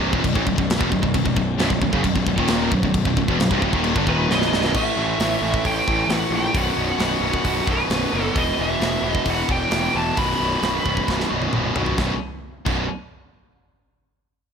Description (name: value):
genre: heavy metal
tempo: 133 BPM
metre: 4/4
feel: straight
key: B phrygian dominant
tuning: A4 = 440 Hz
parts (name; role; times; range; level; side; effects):
- heavy high-gain guitar; riff; 0.0-12.8 s; B1 to A3; -25 LUFS; left 12 dB; distortion
- high-gain distorted guitar; riff; 0.0-12.8 s; B1 to A3; -25 LUFS; right 12 dB; distortion
- fuzz picked electric bass; bass; 0.0-12.9 s; B0 to A#1; -26 LUFS; equal; overdrive
- tight metal drum kit; drums; 0.1-12.8 s; crash cymbal, hi-hat, kick drum, snare drum, toms; -25 LUFS; equal; none
- distorted electric guitar; riff; 1.1-4.7 s; B1 to D#3; -26 LUFS; left 1 dB; distortion
- high-gain lead guitar; melody; 4.1-11.5 s; B4 to B5; -24 LUFS; equal; distortion, digital delay
room: small room ambience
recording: none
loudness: -18 LUFS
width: side -7 dB against mid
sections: 0.0-4.7 A section; 4.7-12.0 B section; 12.0-13.8 C section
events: drum fill 4.3-4.7, 11.1-12.0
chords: 0.0 B; 4.7 A5; 6.5 B5; 8.4 Em; 10.2 B5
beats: 0.24 0.69 | 1.14 1.59 2.04 2.49 | 2.94 3.39 3.84 4.29 | 4.75 5.20 5.65 6.10 | 6.55 7.00 7.46 7.91 | 8.36 8.81 9.27 9.72 | 10.17 10.62 11.08 11.53 | 11.98 12.44